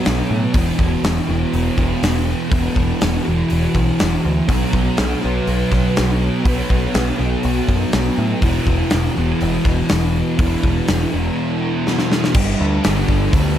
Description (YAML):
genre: rock, shoegaze and dream pop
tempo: 122 BPM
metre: 4/4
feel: straight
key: unclear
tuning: A4 = 440 Hz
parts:
  - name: thick fuzz guitar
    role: riff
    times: 0.0-13.6 s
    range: E2 to B3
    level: -18 LUFS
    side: right 1 dB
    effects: distortion, ensemble chorus
  - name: deep dub picked electric bass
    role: bass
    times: 0.1-13.6 s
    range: E1 to A2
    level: -21 LUFS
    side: equal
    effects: none
  - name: gated 80s drum kit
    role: drums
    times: 0.1-13.4 s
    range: crash cymbal, hi-hat, kick drum, snare drum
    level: -20 LUFS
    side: equal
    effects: none
room: light reverb, small room ambience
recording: none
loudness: -15 LUFS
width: side -10 dB against mid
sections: 0.0-12.4 A section; 12.4-13.6 B section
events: drum fill 11.9-12.4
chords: 0.0 B5; 0.5 E5; 4.5 B5; 8.4 E5; 12.4 G5